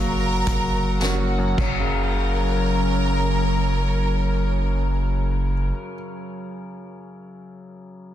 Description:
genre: pop ballad.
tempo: free time.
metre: none.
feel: none.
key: F# major.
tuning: A4 = 440 Hz.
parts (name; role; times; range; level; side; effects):
soft struck synth lead; melody; 0.0-5.7 s; F#3 to A#3; -32 LUFS; left 1 dB; chorus, ping-pong delay.
clear studio violin section; second line; 0.0-5.7 s; F#4 to A#4; -29 LUFS; equal; none.
clear concert grand piano; accompaniment; 0.0-8.1 s; F#2 to A#4; -29 LUFS; left 1 dB; none.
glassy FM pad; sustained chords; 0.0-5.7 s; F#3 to C#6; -29 LUFS; left 1 dB; ensemble chorus, built-in reverb.
saturated sub bass; bass; 0.0-5.7 s; F#1; -23 LUFS; equal; none.
soft-mallet drum kit; drums; 0.5-1.8 s; crash cymbal, hi-hat, kick drum, snare drum; -27 LUFS; equal; none.
room: studio reverb.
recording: dense, heavily limited modern master.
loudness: -19 LUFS.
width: side -11 dB against mid.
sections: 0.0-2.1 A section; 2.1-6.7 B section.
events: slowing down 0.0-2.1; drum fill 1.0-2.1.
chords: 0.0 F#.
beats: free time.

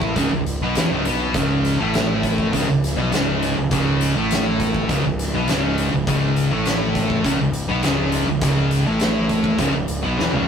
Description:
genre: stoner and doom metal.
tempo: 102 BPM.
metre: 4/4.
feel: straight.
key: C# minor.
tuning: A4 = 440 Hz.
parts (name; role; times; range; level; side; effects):
thick fuzz guitar; riff; 0.0-10.5 s; C#2 to B3; -23 LUFS; left 4 dB; distortion.
thick fuzz guitar; riff; 0.0-10.5 s; C#2 to B3; -24 LUFS; right 5 dB; distortion.
tight distorted guitar; riff; 0.0-10.5 s; C#2 to B3; -25 LUFS; equal; distortion.
fuzz fingered electric bass; bass; 0.0-10.5 s; C#1 to B1; -26 LUFS; equal; overdrive.
oversized low-tuned drum kit; drums; 0.0-10.5 s; hi-hat, kick drum, snare drum, toms; -24 LUFS; equal; none.
room: light reverb.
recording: rough rehearsal-room recording.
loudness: -17 LUFS.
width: side -7 dB against mid.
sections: 0.0-10.5 A section.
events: drum fill 10.2.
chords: 0.0 C#m.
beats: 0.17 0.76 | 1.35 1.94 2.53 3.12 | 3.71 4.30 4.89 5.48 | 6.07 6.66 7.25 7.84 | 8.43 9.01 9.60 10.19.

